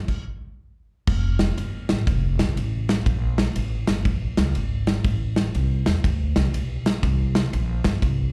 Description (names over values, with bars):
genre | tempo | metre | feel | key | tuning
uptempo gospel | 121 BPM | 4/4 | swing 65% on 8ths | F major | A4 = 440 Hz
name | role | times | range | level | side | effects
natural country drum kit | drums | 0.1-8.2 s | crash cymbal, kick drum, ride cymbal, snare drum | -26 LUFS | equal | none
upright bass | bass | 1.1-8.3 s | F1 to E2 | -26 LUFS | equal | none
room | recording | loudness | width
light reverb | live gig heard through the venue's PA, club reverb | -23 LUFS | mono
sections
0.0-1.1 A section; 1.1-8.3 B section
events
stop 0.1-1.1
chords
none